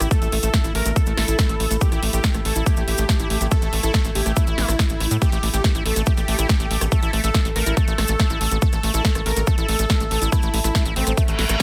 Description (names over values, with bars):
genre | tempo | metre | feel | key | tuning
psychedelic trance | 141 BPM | 4/4 | straight | unclear | A4 = 440 Hz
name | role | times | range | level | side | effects
unison lead | melody | 0.0-11.6 s | A3 to Bb4 | -30 LUFS | equal | phaser, sidechain pumping, tape echo
overtone-sweeping drone | sustained chords | 0.0-11.6 s | A3 to A4 | -35 LUFS | equal | chorus, built-in reverb, phaser, sidechain pumping
screaming distorted acid line | riff | 0.0-11.6 s | A3 to E4 | -31 LUFS | equal | distortion, chorus, sidechain pumping, digital delay
tight sequencer bass | bass | 0.0-11.6 s | A1 to A2 | -26 LUFS | equal | none
big-room dance drum kit | drums | 0.0-11.6 s | hi-hat, rim click, snare drum | -28 LUFS | equal | none
cabasa | percussion | 0.0-11.6 s | none | -34 LUFS | equal | none
electronic kick drum | drums | 0.1-11.6 s | none | -22 LUFS | equal | none
reverse cymbal | sound effects | 11.3-11.6 s | none | -27 LUFS | equal | none
room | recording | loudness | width
digital ambience | dense, heavily limited modern master | -20 LUFS | mono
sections
0.0-11.6 A section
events
reverse cymbal 11.3-11.6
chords
0.0 A5